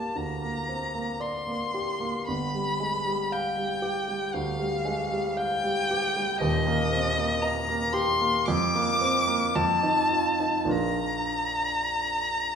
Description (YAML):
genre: classical, romantic duo for violin and grand piano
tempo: 48-59 BPM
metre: 4/4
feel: rubato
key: G minor, Bb major from 6.4 s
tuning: A4 = 442 Hz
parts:
  - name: dark violin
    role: melody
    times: 0.0-12.6 s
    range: Eb5 to D6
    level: -27 LUFS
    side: left 2 dB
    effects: none
  - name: warm grand piano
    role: accompaniment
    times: 0.0-12.6 s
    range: Eb1 to F5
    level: -28 LUFS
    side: right 1 dB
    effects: none
room: wet recital hall reverb, RT60 1.3 s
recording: recorded in a church or concert hall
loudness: -24 LUFS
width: side -7 dB against mid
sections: 0.0-12.6 A section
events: none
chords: 0.0 Gm; 2.3 G7; 6.4 Eb; 8.5 Bb/F; 9.6 F7; 10.7 Bb